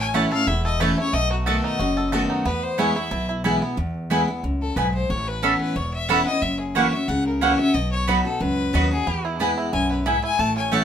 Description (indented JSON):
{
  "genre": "bluegrass",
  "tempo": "182 BPM",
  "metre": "4/4",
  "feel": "swing 53% on 8ths",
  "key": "E major",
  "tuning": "A4 = 440 Hz",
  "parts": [
    { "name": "bluegrass banjo", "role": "melody", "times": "0.0-3.8, 9.1-10.8 s", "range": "A3 to A4", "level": "-29 LUFS", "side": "right 4 dB", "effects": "none" },
    { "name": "clear fiddle", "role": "melody", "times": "0.0-10.8 s", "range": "F#4 to A5", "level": "-27 LUFS", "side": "left 4 dB", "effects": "none" },
    { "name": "picked steel-string acoustic guitar", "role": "accompaniment", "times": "0.0-10.8 s", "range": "E2 to F#4", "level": "-24 LUFS", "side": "left 1 dB", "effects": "none" },
    { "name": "upright bass", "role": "bass", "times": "0.0-10.8 s", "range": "E1 to E2", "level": "-27 LUFS", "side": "equal", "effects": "none" },
    { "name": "mandolin", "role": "stabs", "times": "0.1-10.8 s", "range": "A3 to B5", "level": "-22 LUFS", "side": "right 3 dB", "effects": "none" }
  ],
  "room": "moderate studio reverb, RT60 0.5 s",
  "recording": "minimal, uncompressed stereo recording",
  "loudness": "-20 LUFS",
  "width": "side -8 dB against mid",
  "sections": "0.0-3.8 A section; 3.8-10.8 A section",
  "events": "none",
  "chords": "0.0 A; 1.1 B7; 2.5 E; 5.1 Aadd9; 6.4 F#7; 7.7 B; 9.1 E"
}